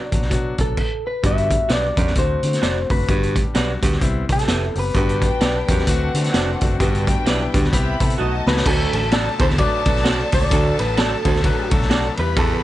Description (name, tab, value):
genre	uptempo 1960s-style soul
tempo	130 BPM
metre	4/4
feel	swing 59% on 8ths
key	unclear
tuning	A4 = 440 Hz
part	electric guitar through a small old amp	melody	0.0-12.6 s	A4 to E5	-24 LUFS	left 1 dB	none
part	warm grand piano	accompaniment	0.0-12.5 s	F#3 to C5	-26 LUFS	left 4 dB	none
part	vintage muted fingered electric bass	bass	0.1-12.5 s	F1 to D3	-23 LUFS	equal	none
part	raw garage drum kit	drums	0.1-12.5 s	crash cymbal, hi-hat, kick drum, ride cymbal, snare drum	-20 LUFS	equal	none
part	breathy baritone saxophone	riff	1.2-12.6 s	D2 to G2	-24 LUFS	right 4 dB	none
part	electric guitar through a small old amp	stabs	1.7-12.1 s	F#4 to E5	-25 LUFS	right 6 dB	none
part	warm studio violin section	second line	4.9-12.6 s	C4 to B5	-27 LUFS	left 1 dB	none
room	little or no reverb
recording	nothing above 10.3 kHz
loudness	-16 LUFS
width	side -14 dB against mid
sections	0.0-1.2 A section; 1.2-8.7 B section; 8.7-12.6 C section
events	stop 0.8-1.2; drum fill 8.2-8.7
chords	0.0 Bm; 1.2 Gmaj7; 2.2 D7; 3.1 Gmaj7; 4.0 Cmaj7; 4.9 Gmaj7; 5.9 D7; 6.8 Gmaj7; 7.7 Cmaj7; 8.2 B7; 8.7 D; 12.1 Em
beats	0.31 0.78 | 1.24 1.70 2.17 2.63 | 3.09 3.56 4.02 4.48 | 4.95 5.41 5.87 6.34 | 6.80 7.26 7.73 8.19 | 8.65 9.12 9.58 10.04 | 10.51 10.97 11.44 11.90 | 12.36